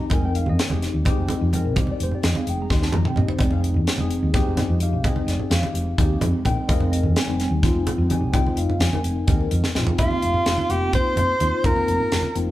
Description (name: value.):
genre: electric jazz fusion.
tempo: 255 BPM (eighths).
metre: 7/8.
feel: straight.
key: F minor.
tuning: A4 = 435 Hz.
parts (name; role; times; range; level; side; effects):
tine electric piano; accompaniment; 0.0-12.5 s; G3 to C6; -26 LUFS; left 2 dB; medium stereo tremolo, phaser.
woody fretless electric bass; bass; 0.1-12.5 s; F1 to F2; -23 LUFS; equal; none.
tight funk drum kit; drums; 0.1-12.5 s; hi-hat, kick drum, snare drum, toms; -23 LUFS; equal; none.
congas; percussion; 0.1-12.3 s; none; -28 LUFS; right 1 dB; none.
breathy soprano saxophone; melody; 10.0-12.4 s; F4 to C5; -23 LUFS; equal; none.
breathy jazz flute; second line; 10.0-12.4 s; F5 to C6; -27 LUFS; right 1 dB; none.
room: moderate large studio reverb, RT60 1.4 s.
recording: band playing live in one room.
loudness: -19 LUFS.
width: side -15 dB against mid.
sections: 0.0-10.0 A section; 10.0-12.5 B section.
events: drum fill 2.7-3.4, 9.4-10.0.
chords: 0.0 Fm7; 10.0 F9sus4.